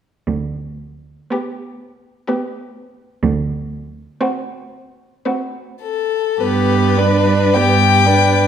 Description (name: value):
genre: classical, slow romantic movement for string quartet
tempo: 50-64 BPM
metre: 3/4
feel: rubato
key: G major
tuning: A4 = 442 Hz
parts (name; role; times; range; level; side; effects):
- warm cello; bass; 0.3-8.4 s; D2 to G2; -17 LUFS; right 3 dB; none
- rich violin; melody; 1.3-8.5 s; A4 to G5; -18 LUFS; left 9 dB; none
- rich violin; second line; 1.3-8.5 s; F#4 to B4; -21 LUFS; left 2 dB; none
- warm viola; accompaniment; 1.3-8.5 s; B3 to D4; -20 LUFS; right 4 dB; none
room: wet recital hall reverb, RT60 1.5 s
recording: none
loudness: -15 LUFS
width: side -8 dB against mid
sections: 0.3-6.4 A section; 6.4-8.5 B section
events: none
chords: 0.3 G/D; 3.2 D6; 6.4 G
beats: | 0.28 1.32 2.29 | 3.23 4.21 5.27 | 6.42 7.55